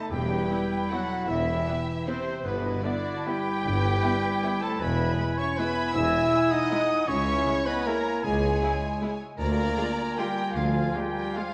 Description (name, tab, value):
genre	classical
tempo	155 BPM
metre	3/4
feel	uneven beats, rubato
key	E minor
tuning	A4 = 440 Hz
part	rich studio violin section	melody	0.0-11.5 s	B4 to E6	-38 LUFS	equal	none
part	hollow concert flute	second line	0.0-11.5 s	B4 to E6	-36 LUFS	equal	none
part	rich symphonic violin section	second line	0.0-11.5 s	E4 to G#5	-42 LUFS	equal	none
part	warm clarinet	second line	0.0-11.5 s	D#4 to E#4	-38 LUFS	equal	none
part	warm oboe	second line	0.0-11.5 s	G#5 to B5	-39 LUFS	equal	none
part	warm French horn section	sustained chords	0.0-11.5 s	B2 to E4	-33 LUFS	equal	none
part	clear trumpet	stabs	0.0-11.5 s	B3 to E5	-35 LUFS	equal	none
part	clear symphonic double bass section	bass	0.1-10.9 s	E1 to D2	-36 LUFS	equal	none
part	mellow tuba	bass	0.1-10.9 s	E1 to D2	-37 LUFS	equal	none
part	rich symphonic cello section	bass	0.1-10.9 s	C#2 to G2	-36 LUFS	equal	none
part	rich symphonic viola section	accompaniment	0.5-11.4 s	G#3 to E#4	-39 LUFS	equal	none
room	wet scoring stage reverb, RT60 1.6 s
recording	worn, warbling old tape, cassette tape, warbly pitch drift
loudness	-26 LUFS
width	mono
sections	0.0-11.5 A section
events	none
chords	0.1 Em; 2.5 Em/G; 4.8 E; 7.1 C#m; 9.4 A#7/D